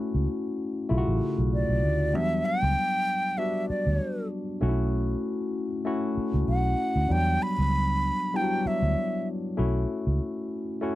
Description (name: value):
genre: lush 1970s-style soul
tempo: 97 BPM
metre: 4/4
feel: swing 54% on 16ths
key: E dorian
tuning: A4 = 439 Hz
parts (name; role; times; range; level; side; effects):
- barky tine electric piano; accompaniment; 0.0-11.0 s; C#3 to F#4; -28 LUFS; left 2 dB; overdrive, phaser
- vintage muted fingered electric bass; bass; 0.1-10.2 s; A1 to E2; -26 LUFS; equal; none
- breathy reedy silver concert flute; melody; 1.5-9.3 s; D5 to B5; -27 LUFS; right 1 dB; none
room: little or no reverb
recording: dry, close 1970s-style studio recording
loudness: -24 LUFS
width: side -16 dB against mid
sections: 0.0-11.0 A section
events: none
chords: 0.0 B7sus4; 2.1 Em7; 4.6 B7sus4; 7.1 Em7; 9.6 B7sus4